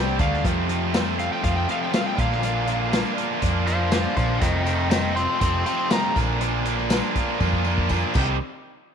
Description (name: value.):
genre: classic rock.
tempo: 121 BPM.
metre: 4/4.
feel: straight.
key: unclear.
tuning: A4 = 440 Hz.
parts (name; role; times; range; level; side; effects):
overdriven slide guitar; melody; 0.0-6.2 s; C5 to C6; -27 LUFS; left 1 dB; slapback echo.
distorted electric guitar; riff; 0.0-8.4 s; F2 to G4; -26 LUFS; right 13 dB; overdrive.
overdriven electric guitar; riff; 0.0-8.4 s; F2 to Eb4; -28 LUFS; left 13 dB; none.
hollow-body short-scale picked electric bass; bass; 0.0-8.4 s; F1 to F2; -26 LUFS; equal; none.
vintage drum kit; drums; 0.2-8.3 s; crash cymbal, hi-hat, kick drum, snare drum, tambourine; -25 LUFS; left 1 dB; none.
tambourine; percussion; 0.2-0.3, 4.7-8.4 s; none; -43 LUFS; left 15 dB; none.
room: light reverb, small room ambience.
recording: 1960s-style stereo with parts hard left and right.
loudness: -20 LUFS.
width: side -7 dB against mid.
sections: 0.4-8.4 A section.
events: electric slide guitar solo 0.4-8.4; drum fill 7.4-8.4.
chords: 0.4 F; 2.2 Bb; 4.4 F; 6.2 Bb; 8.2 Cm; 8.4 N.C..